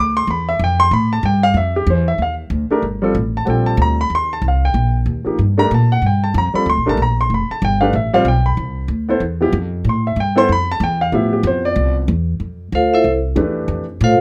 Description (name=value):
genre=modal jazz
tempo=188 BPM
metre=4/4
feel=swing 61% on 8ths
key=Eb lydian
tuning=A4 = 445 Hz
part: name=warm grand piano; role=accompaniment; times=0.0-13.8 s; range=E3 to D6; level=-19 LUFS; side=equal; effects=none
part: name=upright bass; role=bass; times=0.0-14.2 s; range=F1 to Bb2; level=-20 LUFS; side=equal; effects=none
part: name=vibraphone with medium hard mallets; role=melody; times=12.8-14.2 s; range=E4 to F5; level=-16 LUFS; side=equal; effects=none
room=little or no reverb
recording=close, detailed microphones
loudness=-17 LUFS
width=mono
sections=0.0-2.2 A section; 2.2-12.4 A section; 12.4-14.2 A section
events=vibraphone solo 12.4-14.2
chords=0.0 Fmaj9; 2.2 Ebmaj9; 7.3 Fmaj9